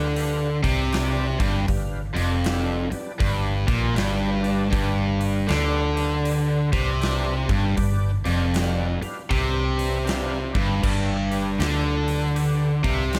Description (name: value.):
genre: blues rock power trio and southern rock.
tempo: 79 BPM.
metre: 4/4.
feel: swing 63% on 8ths.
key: G mixolydian.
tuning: A4 = 440 Hz.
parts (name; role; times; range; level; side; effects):
overdriven tonewheel organ; sustained chords; 0.0-13.2 s; D4 to A5; -37 LUFS; equal; slow rotary speaker, chorus vibrato.
cranked stack guitar; riff; 0.0-13.2 s; F2 to D3; -26 LUFS; equal; overdrive.
vintage muted fingered electric bass; bass; 0.0-13.2 s; F1 to D2; -28 LUFS; equal; none.
huge arena drum kit; drums; 0.2-13.2 s; crash cymbal, hi-hat, kick drum, snare drum; -31 LUFS; equal; none.
room: moderate large studio reverb, RT60 0.9 s.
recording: none.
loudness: -23 LUFS.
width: mono.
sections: 0.0-13.2 A section.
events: tonewheel organ fill 3.2-4.7.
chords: 0.0 G.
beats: 0.16 0.92 | 1.68 2.44 3.21 3.97 | 4.73 5.49 6.26 7.02 | 7.78 8.55 9.31 10.07 | 10.84 11.60 12.37 13.13.